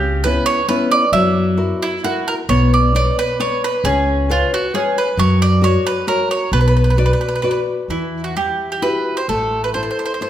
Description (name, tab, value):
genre	italian folk, Italian serenade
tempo	133 BPM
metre	3/4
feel	straight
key	B harmonic minor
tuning	A4 = 440 Hz
part	bowl-back mandolin	melody	0.0-10.3 s	E4 to E5	-19 LUFS	right 4 dB	none
part	nylon-string guitar	accompaniment	0.0-10.3 s	C#3 to F#5	-19 LUFS	left 3 dB	none
part	upright bass	bass	0.0-9.9 s	A1 to F#2	-18 LUFS	equal	none
room	wet recital hall reverb, RT60 1.8 s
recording	none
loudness	-14 LUFS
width	side -11 dB against mid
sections	0.0-7.9 A section; 7.9-10.3 B section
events	none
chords	0.0 C#m7b5; 1.1 F#7; 2.5 Bmadd9; 3.8 C#7; 5.2 F#; 6.5 Bm; 7.9 Emadd9; 9.3 Am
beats	0.24 0.68 | 1.13 1.57 2.03 | 2.49 2.94 3.40 | 3.84 4.29 4.74 | 5.18 5.63 6.08 | 6.52 6.98 7.43 | 7.90 8.36 8.83 | 9.29 9.76 10.21